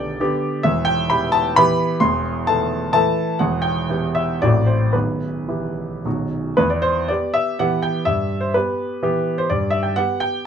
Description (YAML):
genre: classical, romantic triple-time dance for piano with dotted rhythms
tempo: 104-136 BPM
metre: 3/4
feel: rubato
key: E minor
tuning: A4 = 440 Hz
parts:
  - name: warm grand piano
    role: solo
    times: 0.0-10.4 s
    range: B0 to C6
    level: -17 LUFS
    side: equal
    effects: none
room: light reverb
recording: minimal, uncompressed stereo recording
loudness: -17 LUFS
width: side -8 dB against mid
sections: 0.0-6.6 A section; 6.6-10.5 B section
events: none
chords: 0.0 G/B; 0.6 Em; 2.0 Am/E; 3.4 Em; 4.4 F#dim/A; 4.9 Em/B; 6.1 B; 6.6 Em; 8.1 Em/G; 9.5 G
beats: 0.20 | 0.65 1.11 1.57 | 2.02 2.48 2.95 | 3.42 3.91 4.42 | 4.94 5.49 6.05 | 6.57 7.09 7.59 | 8.06 8.54 9.03 | 9.49 9.97